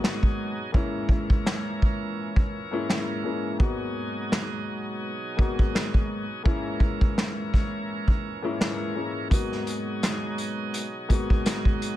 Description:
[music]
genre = hip hop, boom-bap hip-hop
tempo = 84 BPM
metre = 4/4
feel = swing 56% on 16ths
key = G# minor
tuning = A4 = 444 Hz
[part]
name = dark concert grand piano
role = accompaniment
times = 0.0-11.9 s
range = G#2 to F#4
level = -30 LUFS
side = left 2 dB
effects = cassette tape, high-pass filter, low-pass filter
[part]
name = bright tonewheel organ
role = sustained chords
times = 0.0-12.0 s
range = A#2 to A#4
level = -34 LUFS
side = right 2 dB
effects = overdrive, slow rotary speaker, high-pass filter, low-pass filter
[part]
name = vintage drum kit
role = drums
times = 0.0-12.0 s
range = handclaps, hi-hat, kick drum, snare drum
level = -23 LUFS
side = equal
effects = none
[sound]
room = little or no reverb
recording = none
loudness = -24 LUFS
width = side -14 dB against mid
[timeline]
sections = 0.0-12.0 A section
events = break 0.0-9.3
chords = 0.0 G#m7; 0.7 A#dim/G#; 3.6 G#m7; 6.5 A#dim/G#; 9.3 G#m7

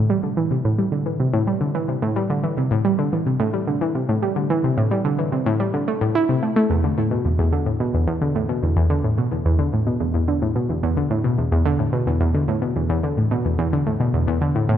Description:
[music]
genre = ambient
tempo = 109 BPM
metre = 4/4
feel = straight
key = A minor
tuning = A4 = 437 Hz
[part]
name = analog pluck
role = solo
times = 0.0-14.8 s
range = E2 to E4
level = -18 LUFS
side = equal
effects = chorus, tape echo
[sound]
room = wet concert hall reverb, RT60 2.4 s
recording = none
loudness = -18 LUFS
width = side -10 dB against mid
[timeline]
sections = 0.0-14.8 A section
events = none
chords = none

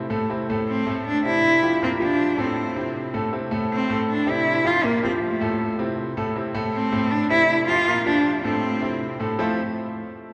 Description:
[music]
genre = latin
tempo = 158 BPM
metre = 4/4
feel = straight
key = unclear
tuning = A4 = 440 Hz
[part]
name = clear concert grand piano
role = accompaniment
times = 0.0-9.6 s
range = A2 to C5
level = -27 LUFS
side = equal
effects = none
[part]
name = warm cello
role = melody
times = 0.7-9.6 s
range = A3 to F4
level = -24 LUFS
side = equal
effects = none
[sound]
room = wet church reverb, RT60 3.7 s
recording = recorded in a church or concert hall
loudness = -22 LUFS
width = mono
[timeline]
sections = 0.0-3.3 A section; 3.3-9.4 B section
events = none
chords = 0.0 Am; 1.1 Dm9; 1.8 Bbmaj13; 2.6 Am; 4.1 Dm9; 4.8 Gm9; 5.6 Am; 7.1 Dm9; 7.9 Bbmaj13; 8.6 Am; 9.4 Fmaj7

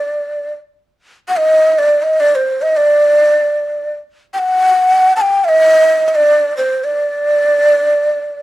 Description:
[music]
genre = arabic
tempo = 106 BPM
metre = 4/4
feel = straight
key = D maqam hijaz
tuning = A4 = 441 Hz
[part]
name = breathy mellow ney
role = solo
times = 0.0-8.4 s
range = C5 to A5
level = -10 LUFS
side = equal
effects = none
[sound]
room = moderate studio reverb, RT60 0.6 s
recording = dark, warm production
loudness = -10 LUFS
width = side -16 dB against mid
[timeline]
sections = 0.0-1.1 A section; 1.1-8.4 B section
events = none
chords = none

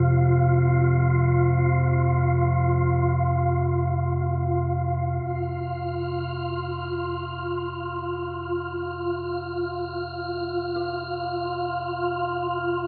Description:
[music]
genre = dark ambient drone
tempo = free time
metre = none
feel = none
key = unclear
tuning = A4 = 440 Hz
[part]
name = deep rumbling drone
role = drone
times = 0.0-12.9 s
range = F2 to C3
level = -27 LUFS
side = equal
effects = built-in reverb
[part]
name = wind-like tuned noise texture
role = texture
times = 0.0-12.9 s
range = F4 to F6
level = -29 LUFS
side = equal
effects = built-in reverb
[part]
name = dark detuned synth bell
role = arpeggios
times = 10.8-12.9 s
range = F4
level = -40 LUFS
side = equal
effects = none
[sound]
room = wet cathedral reverb, RT60 6.4 s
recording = none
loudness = -25 LUFS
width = mono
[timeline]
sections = 0.0-5.2 A section; 5.2-12.9 B section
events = filter sweep on synth drone 5.2-12.9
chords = 0.0 F5

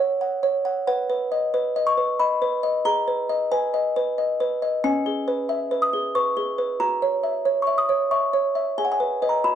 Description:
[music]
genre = classical, lullaby for music box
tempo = 91 BPM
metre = 3/4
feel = straight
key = unclear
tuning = A4 = 441 Hz
[part]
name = music box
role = solo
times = 0.0-9.6 s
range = C#4 to D#6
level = -20 LUFS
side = equal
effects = none
[sound]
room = light reverb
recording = dry, close 1970s-style studio recording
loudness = -20 LUFS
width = side -9 dB against mid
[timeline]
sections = 0.0-9.6 A section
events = none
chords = 0.0 F#/A#; 0.9 B; 2.9 G#m; 4.8 C#m7; 6.8 F#7; 8.8 G#m

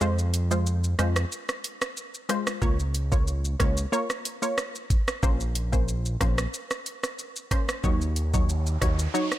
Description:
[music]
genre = dancehall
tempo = 92 BPM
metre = 4/4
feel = straight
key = Bb minor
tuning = A4 = 440 Hz
[part]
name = punchy chord stab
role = accompaniment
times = 0.0-9.3 s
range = Gb3 to Db5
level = -30 LUFS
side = left 1 dB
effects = chorus
[part]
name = fat analog bass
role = bass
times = 0.0-9.1 s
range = Bb1 to F2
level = -26 LUFS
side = equal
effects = none
[part]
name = island pop drum kit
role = drums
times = 0.0-9.4 s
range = hi-hat, kick drum, rim click, shaker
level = -27 LUFS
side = equal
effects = none
[part]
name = noise sweep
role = sound effects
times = 8.2-9.4 s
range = none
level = -39 LUFS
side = right 4 dB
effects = none
[sound]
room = little or no reverb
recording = none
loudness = -24 LUFS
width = side -14 dB against mid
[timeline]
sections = 0.0-9.4 A section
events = break 0.0-2.6; noise sweep 8.2-9.4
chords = 0.0 Fm; 2.6 Db6; 5.2 Bbmadd9; 7.8 Ebm7

